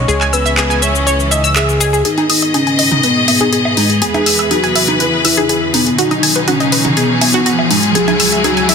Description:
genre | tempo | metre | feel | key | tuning
progressive house | 122 BPM | 4/4 | straight | G# minor | A4 = 440 Hz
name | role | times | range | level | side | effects
soft octave-layered synth lead | melody | 0.0-8.7 s | G#3 to D#5 | -16 LUFS | left 1 dB | chorus, digital delay
rich studio string section | sustained chords | 0.0-8.7 s | C#2 to D#5 | -17 LUFS | left 2 dB | none
fat analog bass | bass | 0.0-2.0 s | C#2 | -17 LUFS | right 1 dB | none
analog pluck | arpeggios | 0.1-8.7 s | F#4 to E6 | -18 LUFS | left 1 dB | chorus, digital delay
house drum kit | drums | 0.1-8.7 s | handclaps, hi-hat, shaker | -16 LUFS | left 2 dB | studio reverb
riser | sound effects | 4.2-8.7 s | none | -21 LUFS | right 2 dB | none
electronic congas, toms and bongos | percussion | 2.2-8.5 s | none | -21 LUFS | right 3 dB | studio reverb
room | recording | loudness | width
light reverb | dense, heavily limited modern master | -10 LUFS | side -6 dB against mid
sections
0.0-2.0 A section; 2.0-8.7 B section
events
build-up 2.0-8.7; filter sweep on synth pluck 2.0-8.7; filter sweep on soft synth lead 2.0-8.7; riser 4.2-8.7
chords
0.1 C#m; 2.0 G#m; 4.0 E; 6.0 B6; 8.0 C#m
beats
| 0.08 0.57 1.07 1.56 | 2.05 2.54 3.03 3.53 | 4.02 4.51 5.00 5.49 | 5.99 6.48 6.97 7.46 | 7.95 8.44

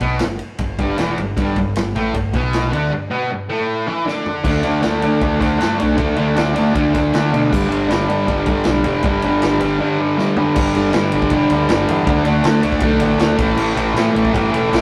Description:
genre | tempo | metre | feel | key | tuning
garage rock duo or trio | 157 BPM | 4/4 | straight | unclear | A4 = 445 Hz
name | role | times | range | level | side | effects
fuzz guitar | riff | 0.0-14.8 s | E2 to E4 | -19 LUFS | equal | distortion
growling picked electric bass | bass | 0.0-14.8 s | E1 to D3 | -25 LUFS | equal | overdrive
vintage drum kit | drums | 0.0-14.8 s | crash cymbal, kick drum, ride cymbal, snare drum, toms | -25 LUFS | equal | none
room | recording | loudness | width
moderate stone room reverb, RT60 1.3 s | rough rehearsal-room recording, tube saturation | -17 LUFS | mono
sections
0.0-4.5 A section; 4.5-10.6 B section; 10.6-14.8 C section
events
break 2.9-4.5; drum fill 4.1-4.5, 10.2-10.6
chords
0.0 G5; 4.5 D5; 7.5 G5; 12.1 D5; 13.4 A5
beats
0.22 0.60 0.99 | 1.37 1.76 2.14 2.53 | 2.91 3.30 3.68 4.07 | 4.45 4.83 5.22 5.60 | 5.99 6.37 6.75 7.13 | 7.52 7.90 8.28 8.66 | 9.04 9.42 9.80 10.19 | 10.56 10.94 11.32 11.70 | 12.08 12.46 12.84 13.22 | 13.60 13.97 14.35 14.73

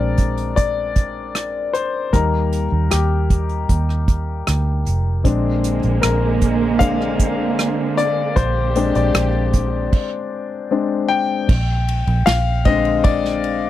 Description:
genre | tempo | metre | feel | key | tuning
pop ballad | 77 BPM | 4/4 | straight | unclear | A4 = 441 Hz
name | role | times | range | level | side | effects
clear grand piano | accompaniment | 0.0-13.7 s | D3 to G5 | -20 LUFS | left 6 dB | none
vintage muted fingered electric bass | bass | 0.0-13.7 s | F1 to Eb2 | -20 LUFS | right 1 dB | none
unplugged drum kit | drums | 0.2-13.6 s | crash cymbal, hi-hat, kick drum, ride cymbal, rim click, snare drum | -18 LUFS | right 1 dB | none
warm studio string section | sustained chords | 5.2-9.9 s | D3 to G4 | -22 LUFS | right 7 dB | none
room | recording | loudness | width
little or no reverb | dry, close 1970s-style studio recording | -16 LUFS | side -13 dB against mid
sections
0.0-11.5 A section; 11.5-13.7 B section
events
grand piano solo 0.0-11.5, 11.5-13.7; stop 9.9-11.5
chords
0.0 Bb7; 2.1 Eb; 5.3 Bb7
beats
0.58 1.36 | 2.14 2.92 3.69 4.47 | 5.25 6.03 6.81 7.59 | 8.37 9.15 9.93 10.71 | 11.49 12.27 13.04

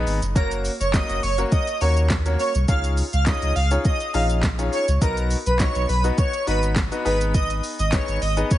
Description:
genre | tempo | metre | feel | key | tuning
dance-pop | 103 BPM | 4/4 | straight | F# major | A4 = 440 Hz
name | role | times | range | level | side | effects
clear concert grand piano | accompaniment | 0.0-8.6 s | A#3 to D#5 | -28 LUFS | left 2 dB | sidechain pumping
warm sub bass | bass | 0.0-8.4 s | F#1 to D#2 | -22 LUFS | equal | sidechain pumping
smooth R&B drum kit | drums | 0.1-8.6 s | handclaps, hi-hat, kick drum, shaker, snare drum | -24 LUFS | equal | none
airy dreamy lead | melody | 0.4-8.6 s | A#4 to E#5 | -25 LUFS | right 1 dB | chorus, ping-pong delay
room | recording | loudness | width
light reverb | heavily compressed radio sound, nothing above 10.5 kHz | -19 LUFS | side -14 dB against mid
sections
0.0-8.6 A section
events
none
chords
0.4 F#; 2.7 C#add9; 5.0 B; 7.1 G#m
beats
| 0.36 0.94 1.52 2.10 | 2.69 3.27 3.85 4.43 | 5.02 5.60 6.18 6.76 | 7.35 7.93 8.51

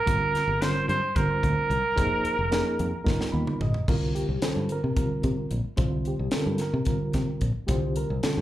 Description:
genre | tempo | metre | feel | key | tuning
electric jazz fusion | 220 BPM (eighths) | 7/8 | straight | unclear | A4 = 440 Hz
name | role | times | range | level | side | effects
breathy trumpet | melody | 0.0-3.3 s | Bb4 to C5 | -26 LUFS | right 2 dB | slapback echo, tape echo
reed electric piano | accompaniment | 0.1-8.4 s | D3 to B5 | -29 LUFS | right 1 dB | fast tremolo, slapback echo
fingered electric bass | bass | 0.1-8.4 s | F1 to C3 | -28 LUFS | left 1 dB | none
tight funk drum kit | drums | 0.1-8.4 s | crash cymbal, hi-hat, kick drum, snare drum, toms | -28 LUFS | equal | none
room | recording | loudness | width
light reverb | live gig heard through the venue's PA, club reverb | -24 LUFS | side -14 dB against mid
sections
0.0-3.9 A section; 3.9-8.4 B section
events
drum fill 3.1-3.9; reed electric piano fill 3.1-3.9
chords
0.1 Gm7; 2.0 Fm7; 3.1 G7alt; 3.9 Csus2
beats
| 0.07 0.34 0.61 0.88 1.16 1.43 1.70 | 1.97 2.24 2.52 2.79 3.06 3.33 3.60 | 3.88 4.15 4.42 4.70 4.97 5.24 5.51 | 5.78 6.06 6.33 6.60 6.87 7.15 7.42 | 7.69 7.96 8.24

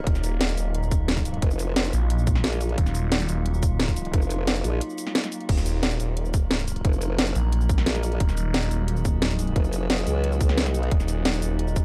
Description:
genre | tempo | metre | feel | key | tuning
dark technical drum and bass | 177 BPM | 4/4 | straight | Eb minor | A4 = 440 Hz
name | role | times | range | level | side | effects
metallic inharmonic drone | sustained chords | 0.0-11.8 s | Gb3 to Bb4 | -35 LUFS | equal | chorus, built-in reverb, sidechain pumping
formant-sweep wobble bass | bass | 0.0-4.8, 6.8-10.9 s | F1 to Db2 | -27 LUFS | equal | chorus
phased detuned saw bass | bass | 0.1-11.8 s | Eb1 to Bb1 | -27 LUFS | equal | phaser, overdrive, sidechain pumping
drum and bass drum kit | drums | 0.1-11.8 s | cabasa, crash cymbal, hi-hat, snare drum | -29 LUFS | equal | overdrive
electronic kick drum | drums | 0.1-11.8 s | none | -25 LUFS | equal | overdrive
room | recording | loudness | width
little or no reverb | dark, warm production | -24 LUFS | mono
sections
0.0-5.5 A section; 5.5-11.8 A section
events
drop 0.0-5.5, 5.5-11.8; break 4.8-5.5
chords
0.0 Ebm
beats
| 0.07 0.41 0.74 1.08 | 1.42 1.76 2.10 2.44 | 2.78 3.12 3.46 3.80 | 4.13 4.47 4.81 5.15 | 5.49 5.83 6.17 6.51 | 6.85 7.19 7.53 7.86 | 8.20 8.54 8.88 9.22 | 9.56 9.90 10.24 10.57 | 10.91 11.25 11.59

